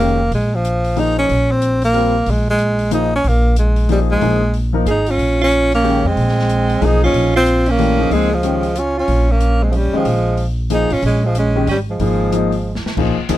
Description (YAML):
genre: modal jazz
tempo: 185 BPM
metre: 3/4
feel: swing 62% on 8ths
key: unclear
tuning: A4 = 440 Hz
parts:
  - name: warm tenor saxophone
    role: melody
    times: 0.0-12.8 s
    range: F3 to Eb4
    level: -17 LUFS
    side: right 1 dB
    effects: none
  - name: clear concert grand piano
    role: accompaniment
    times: 0.0-13.4 s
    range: Eb3 to Bb4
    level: -19 LUFS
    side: left 4 dB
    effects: none
  - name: upright bass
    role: bass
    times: 0.0-13.4 s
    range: F1 to F2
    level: -18 LUFS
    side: equal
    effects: none
  - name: open jazz drum kit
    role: drums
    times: 0.3-13.4 s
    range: crash cymbal, hi-hat, kick drum, ride cymbal, snare drum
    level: -31 LUFS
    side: left 1 dB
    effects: none
  - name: warm alto saxophone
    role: second line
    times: 4.9-12.8 s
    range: Ab3 to Ab4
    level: -21 LUFS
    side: right 4 dB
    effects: none
room: little or no reverb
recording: close, detailed microphones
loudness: -13 LUFS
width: side -14 dB against mid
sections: 0.0-13.0 A section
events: drum fill 12.6-13.0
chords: 0.0 Bbm7; 1.3 Absus2; 5.2 Bbm9; 9.1 Db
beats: 0.00 | 0.32 0.65 0.97 | 1.29 1.62 1.94 | 2.27 2.59 2.92 | 3.24 3.56 3.89 | 4.21 4.54 4.86 | 5.19 5.51 5.84 | 6.16 6.49 6.81 | 7.13 7.46 7.78 | 8.11 8.43 8.76 | 9.08 9.41 9.73 | 10.06 10.38 10.70 | 11.03 11.35 11.68 | 12.00 12.32 12.65 | 12.97 13.29